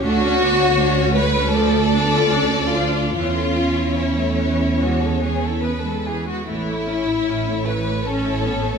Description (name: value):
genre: classical, slow romantic movement for string orchestra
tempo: 70-81 BPM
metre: 4/4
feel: rubato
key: A major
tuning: A4 = 437 Hz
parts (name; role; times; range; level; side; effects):
- warm studio violin section; melody; 0.0-8.8 s; B4 to D5; -27 LUFS; left 7 dB; none
- warm studio violin section; second line; 0.0-8.8 s; E4 to B4; -21 LUFS; left 2 dB; none
- rich studio viola section; accompaniment; 0.0-8.8 s; E3 to F#4; -26 LUFS; equal; none
- rich studio cello section; bass; 0.0-8.8 s; G#3 to D4; -25 LUFS; right 3 dB; none
- warm studio double bass section; bass; 0.0-8.8 s; A1 to E2; -23 LUFS; right 4 dB; none
room: moderate scoring stage reverb, RT60 1.4 s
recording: none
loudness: -17 LUFS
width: side -6 dB against mid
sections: 0.0-8.8 A section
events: none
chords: 0.0 Dmaj7; 1.5 Dm; 3.1 A/E; 4.8 E; 6.5 A